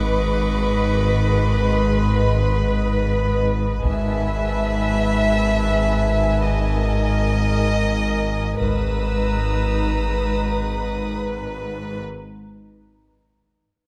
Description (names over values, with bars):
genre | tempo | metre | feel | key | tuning
cinematic, suspense film score | free time | none | none | Ab minor | A4 = 440 Hz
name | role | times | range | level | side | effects
rich chamber violin section | melody | 0.0-12.0 s | Cb5 to E5 | -28 LUFS | equal | none
warbly tape-like pad | sustained chords | 0.0-12.0 s | Eb4 to Cb6 | -29 LUFS | equal | chorus, built-in reverb
clear chamber double bass section | bass | 0.0-12.0 s | Ab1 | -29 LUFS | equal | none
rich symphonic cello section | bass | 0.0-12.0 s | Ab2 | -27 LUFS | equal | none
warm sub bass | drone | 0.0-12.0 s | Ab1 | -27 LUFS | equal | none
rich chamber violin section | texture | 0.0-11.2 s | G#5 to Fb6 | -36 LUFS | equal | none
taiko ensemble | drums | 3.8-10.3 s | none | -30 LUFS | equal | none
room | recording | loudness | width
light reverb | close, detailed microphones | -21 LUFS | mono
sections
0.0-9.0 A section; 9.0-11.7 B section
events
none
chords
0.0 Abm; 3.8 E/G#; 6.4 Eb5/Ab; 8.6 Abmadd9